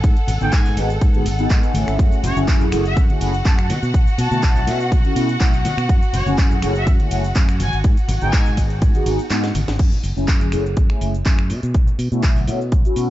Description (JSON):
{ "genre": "filtered disco house", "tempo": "123 BPM", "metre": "4/4", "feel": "swing 54% on 16ths", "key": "F# dorian", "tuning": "A4 = 440 Hz", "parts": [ { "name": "rich symphonic string section", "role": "sustained chords", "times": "0.0-9.8 s", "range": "F#4 to F#5", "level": "-27 LUFS", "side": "equal", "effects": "vintage 12-bit sampler grit, sidechain pumping, low-pass filter" }, { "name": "fingered electric bass", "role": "bass", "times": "0.0-13.1 s", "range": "F#1 to B2", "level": "-22 LUFS", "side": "equal", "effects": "sidechain pumping, low-pass filter" }, { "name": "electronic kick drum", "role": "drums", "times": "0.0-12.8 s", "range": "none", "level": "-16 LUFS", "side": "equal", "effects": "small room reverb" }, { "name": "house drum kit", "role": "drums", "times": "0.0-13.1 s", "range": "crash cymbal, finger snaps, handclaps, hi-hat, ride cymbal, shaker, snare drum", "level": "-29 LUFS", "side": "equal", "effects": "small room reverb" }, { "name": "tambourine and congas", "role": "percussion", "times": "0.0-13.1 s", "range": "none", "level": "-29 LUFS", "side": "left 2 dB", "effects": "sidechain pumping on perc, low-pass filter on perc" }, { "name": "clear trumpet section", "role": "melody", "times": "0.4-8.6 s", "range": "C#5 to A5", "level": "-29 LUFS", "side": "equal", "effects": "sidechain pumping, low-pass filter, dub echo" }, { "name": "mellow synth brass", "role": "accompaniment", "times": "0.4-13.1 s", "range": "A3 to G#4", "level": "-24 LUFS", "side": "equal", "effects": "chorus, phaser, sidechain pumping, low-pass filter" } ], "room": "digital ambience", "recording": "dark, warm production, nothing above 7.8 kHz", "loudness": "-15 LUFS", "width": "side -14 dB against mid", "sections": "0.0-9.8 A section; 9.8-13.1 B section", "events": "drop 0.0-9.8; break 9.3-9.8; drum fill 9.3-9.8", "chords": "0.0 G#m7; 2.0 F#m7; 3.7 B7sus4; 5.9 F#m7; 7.6 G#m7; 9.8 F#m7; 11.5 B7sus4" }